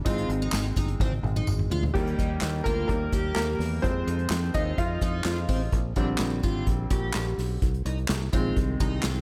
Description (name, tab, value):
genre	piano-driven pop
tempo	127 BPM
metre	4/4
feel	straight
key	Eb major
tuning	A4 = 435 Hz
part	bright upright piano	accompaniment	0.0-9.2 s	D3 to F5	-33 LUFS	equal	none
part	picked steel-string acoustic guitar	riff	0.1-9.2 s	C4 to G4	-38 LUFS	equal	analog chorus
part	fingered electric bass	bass	0.1-9.2 s	G1 to F2	-31 LUFS	equal	none
part	unplugged drum kit	drums	0.1-9.1 s	crash cymbal, handclaps, hi-hat, kick drum, snare drum, toms	-31 LUFS	equal	none
part	tambourine	percussion	0.5-1.6 s	none	-44 LUFS	equal	none
room	light reverb, small room reverb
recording	none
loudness	-27 LUFS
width	mono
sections	0.0-1.9 A section; 1.9-9.2 B section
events	upright piano solo 0.0-1.9, 1.9-9.2; drum fill 1.0-1.9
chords	0.1 Ab; 1.9 Eb; 3.8 Fm; 5.7 Bb6; 7.6 Ab